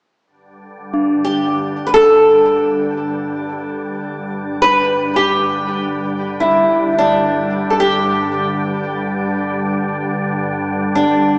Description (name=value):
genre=world meditative, free-time meditation music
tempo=free time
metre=none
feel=none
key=unclear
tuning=A4 = 440 Hz
part: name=soft additive organ-like pad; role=drone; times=0.6-11.4 s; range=G2 to D3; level=-24 LUFS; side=equal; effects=ensemble chorus, built-in reverb
part: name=quartz singing bowl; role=texture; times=0.9-9.2 s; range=D4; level=-27 LUFS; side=equal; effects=shimmer reverb
part: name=flamenco guitar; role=melody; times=1.2-11.4 s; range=D4 to B4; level=-17 LUFS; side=equal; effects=lush chorus, shimmer reverb, tape echo
room=wet plate reverb, RT60 2.7 s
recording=dreamy mix soaked in reverb, small speaker sound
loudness=-16 LUFS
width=mono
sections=0.3-11.4 A section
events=none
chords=none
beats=free time